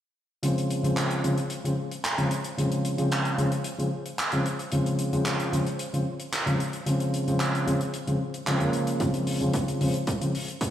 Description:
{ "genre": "nu-disco, nu disco", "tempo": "112 BPM", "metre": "4/4", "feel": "straight", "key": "Bb minor", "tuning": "A4 = 440 Hz", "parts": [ { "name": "dark concert grand piano", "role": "accompaniment", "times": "0.4-10.3 s", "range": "Db3 to C4", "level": "-25 LUFS", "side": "equal", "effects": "low-pass filter, ping-pong delay" }, { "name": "damped 70s drum kit", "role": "drums", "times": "0.4-10.7 s", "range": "handclaps, hi-hat, toms", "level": "-31 LUFS", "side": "right 1 dB", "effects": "high-pass filter on hats, high-pass filter on toms, high-pass filter on snare, high-pass filter on room" }, { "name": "electronic kick drum", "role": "drums", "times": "9.0-10.7 s", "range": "none", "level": "-30 LUFS", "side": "right 1 dB", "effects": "overdrive, high-pass filter on kick, high-pass filter on room" } ], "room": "moderate plate reverb, RT60 2.0 s", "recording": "played on a big sound system in a bare room, stone room reverb", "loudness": "-24 LUFS", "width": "side -11 dB against mid", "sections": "0.4-9.0 A section; 9.0-10.7 B section", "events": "build-up 9.0-10.7; drum fill 9.0-10.7; filter sweep on grand piano 9.0-10.7", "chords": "0.4 Bbm9 (rootless); 9.0 Dbmaj7" }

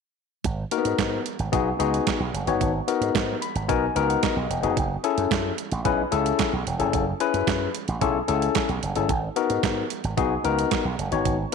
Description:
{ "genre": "early-eighties boogie funk", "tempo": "111 BPM", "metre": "4/4", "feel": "straight", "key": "G# minor", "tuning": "A4 = 442 Hz", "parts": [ { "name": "slap bass with an envelope filter", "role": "bass", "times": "0.4-11.4 s", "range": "E1 to G#2", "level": "-28 LUFS", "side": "right 2 dB", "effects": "none" }, { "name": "clean 12-bit digital drum machine", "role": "drums", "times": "0.4-11.5 s", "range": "handclaps, hi-hat, kick drum, snare drum", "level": "-28 LUFS", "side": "right 7 dB", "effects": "none" }, { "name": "barky tine electric piano", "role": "accompaniment", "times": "0.7-11.5 s", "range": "A#3 to B5", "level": "-24 LUFS", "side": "left 8 dB", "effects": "none" } ], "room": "moderate echo chamber reverb, RT60 1.4 s", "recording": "1960s-style stereo with parts hard left and right", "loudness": "-22 LUFS", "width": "side -5 dB against mid", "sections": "0.4-11.5 A section", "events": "tine electric piano fill 3.1-4.8", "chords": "0.4 G#m9; 4.8 F#m9; 9.1 G#m9" }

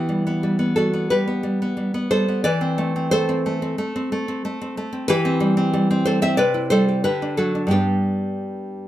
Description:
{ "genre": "romantic piece for solo classical guitar", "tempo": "83-93 BPM", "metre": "4/4", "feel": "rubato", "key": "unclear", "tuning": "A4 = 438 Hz", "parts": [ { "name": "nylon-string guitar", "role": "solo", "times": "0.0-8.9 s", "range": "G2 to E5", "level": "-19 LUFS", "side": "equal", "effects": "none" } ], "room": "wet studio reverb, RT60 0.6 s", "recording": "none", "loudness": "-19 LUFS", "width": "side -13 dB against mid", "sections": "0.0-8.9 A section", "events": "none", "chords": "0.0 Em; 2.4 Am/E; 5.1 C/E; 6.4 C; 7.1 D; 7.7 G" }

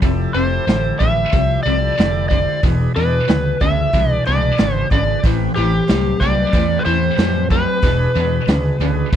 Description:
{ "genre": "blues rock power trio and southern rock", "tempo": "92 BPM", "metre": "4/4", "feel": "straight", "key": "A minor", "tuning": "A4 = 445 Hz", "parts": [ { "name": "overdriven tonewheel organ", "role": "sustained chords", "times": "0.0-9.2 s", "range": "C4 to D5", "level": "-28 LUFS", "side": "right 6 dB", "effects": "slow rotary speaker" }, { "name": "tight distorted guitar", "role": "riff", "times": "0.0-9.2 s", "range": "E2 to F#3", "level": "-20 LUFS", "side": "left 2 dB", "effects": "distortion" }, { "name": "vintage muted fingered electric bass", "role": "bass", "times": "0.0-9.2 s", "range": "E1 to F2", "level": "-20 LUFS", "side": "equal", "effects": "none" }, { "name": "raw garage drum kit", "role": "drums", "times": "0.0-9.2 s", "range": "hi-hat, kick drum, snare drum", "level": "-17 LUFS", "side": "equal", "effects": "none" }, { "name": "overdriven slide guitar", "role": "melody", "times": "0.3-9.2 s", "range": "G4 to E5", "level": "-20 LUFS", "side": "equal", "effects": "slapback echo" } ], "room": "little or no reverb", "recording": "dry, close 1970s-style studio recording", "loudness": "-14 LUFS", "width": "side -10 dB against mid", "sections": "0.0-9.2 A section", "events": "none", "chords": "0.0 Fmaj7; 2.6 E7; 5.2 Am9; 7.8 E7" }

